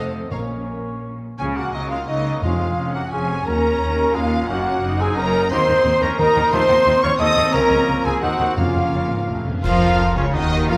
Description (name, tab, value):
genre	classical, dramatic, fast romantic movement for symphony orchestra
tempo	174 BPM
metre	3/4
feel	rubato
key	Db major, Bb minor from 5.5 s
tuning	A4 = 441 Hz
part	warm symphonic violin section	melody	0.0-10.8 s	Db5 to Eb6	-31 LUFS	equal	none
part	mellow clarinet	second line	0.0-1.2, 9.6-10.8 s	Db4 to Bb4	-34 LUFS	equal	none
part	mellow hollow concert flute	second line	0.0-10.8 s	Bb4 to Eb6	-29 LUFS	equal	none
part	warm cor anglais	second line	0.0-10.8 s	Gb3 to Eb5	-31 LUFS	equal	none
part	warm symphonic violin section	second line	0.0-10.8 s	Db4 to Eb6	-32 LUFS	equal	none
part	dark symphonic viola section	accompaniment	0.0-10.8 s	Db3 to Eb4	-31 LUFS	equal	none
part	mellow French horn section	sustained chords	0.0-10.8 s	Db3 to Eb5	-25 LUFS	equal	none
part	rich symphonic cello section	bass	0.0-10.8 s	Eb2 to F3	-28 LUFS	equal	none
part	warm symphonic double bass section	bass	0.0-10.8 s	F1 to F2	-29 LUFS	equal	none
part	timpani	percussion	0.3-2.9, 8.6-9.6 s	F2 to Bb2	-30 LUFS	equal	none
part	bright trombone section	sustained chords	1.4-10.8 s	C3 to Eb4	-33 LUFS	equal	none
part	dark trumpet section	stabs	1.4-10.8 s	Eb4 to Eb5	-29 LUFS	equal	none
part	cymbal swell, clash cymbals and concert bass drum	percussion	7.5-10.3 s	none	-29 LUFS	equal	none
room	wet concert hall reverb, RT60 1.8 s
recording	none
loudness	-19 LUFS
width	mono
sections	0.0-1.4 A section; 1.4-9.6 B section; 9.6-10.8 C section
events	timpani fill 9.3-9.6; band accent 9.6-10.0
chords	0.3 Bbm; 1.4 Db; 2.4 Db/F; 3.5 Eb7(no3); 4.5 Ebm/Gb; 5.5 Cm7/Eb; 6.5 F7/Eb (rootless); 7.5 Bbm/Db; 8.2 Cdim/Eb; 8.6 Bbm/F; 9.3 F; 9.6 Bbm/F